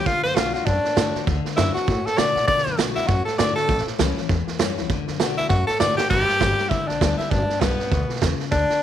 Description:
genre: rockabilly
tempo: 199 BPM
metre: 4/4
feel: swing 59% on 8ths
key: D major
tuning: A4 = 440 Hz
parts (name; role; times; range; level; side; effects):
- breathy tenor saxophone; melody; 0.0-8.8 s; B3 to D5; -22 LUFS; left 1 dB; slapback echo
- picked steel-string acoustic guitar; accompaniment; 0.0-8.8 s; E2 to G4; -28 LUFS; left 10 dB; none
- upright bass; bass; 0.0-8.7 s; G1 to B2; -26 LUFS; equal; none
- vintage drum kit; drums; 0.1-8.7 s; crash cymbal, hi-hat, kick drum, snare drum; -24 LUFS; right 5 dB; none
room: light reverb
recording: 1960s-style stereo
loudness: -19 LUFS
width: side -10 dB against mid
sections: 0.0-6.1 A section; 6.1-8.8 B section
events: tenor saxophone solo 0.0-6.1; drum fill 6.0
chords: 0.1 D; 3.7 A7; 4.9 D; 6.1 G

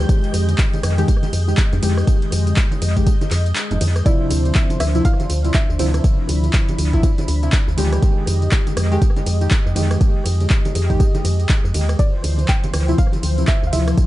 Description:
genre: deep house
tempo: 121 BPM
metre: 4/4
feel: swing 60% on 16ths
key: unclear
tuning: A4 = 440 Hz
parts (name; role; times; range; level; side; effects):
- warm analog pad; sustained chords; 0.0-14.1 s; E3 to B5; -28 LUFS; left 1 dB; chorus, sidechain pumping
- warm analog keys; stabs; 0.0-14.1 s; C3 to G4; -24 LUFS; left 1 dB; chorus, sidechain pumping, tape echo
- woody FM bass; bass; 0.0-13.9 s; F1 to F2; -18 LUFS; equal; sidechain pumping
- punchy analog drum machine; drums; 0.0-14.1 s; handclaps, hi-hat, ride cymbal, rim click, tambourine; -26 LUFS; equal; overdrive, analog delay
- string machine, violins; texture; 0.0-4.1 s; G6; -38 LUFS; equal; ensemble chorus, sidechain pumping
- electronic kick drum; drums; 0.1-14.1 s; none; -17 LUFS; equal; none
- congas; percussion; 0.5-13.8 s; none; -30 LUFS; right 3 dB; none
- soft round pluck; melody; 4.1-7.2, 12.0-14.1 s; C5 to G5; -29 LUFS; right 1 dB; chorus, tape echo
room: little or no reverb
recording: echo-heavy mix, nothing above 10.5 kHz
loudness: -15 LUFS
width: side -16 dB against mid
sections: 0.0-4.1 A section; 4.1-14.1 A section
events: drop 0.0-4.1, 4.1-14.1; kick drops out 3.6-4.1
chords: 0.1 Fm9; 4.1 Dm9; 8.0 Fm9; 12.0 Dm9

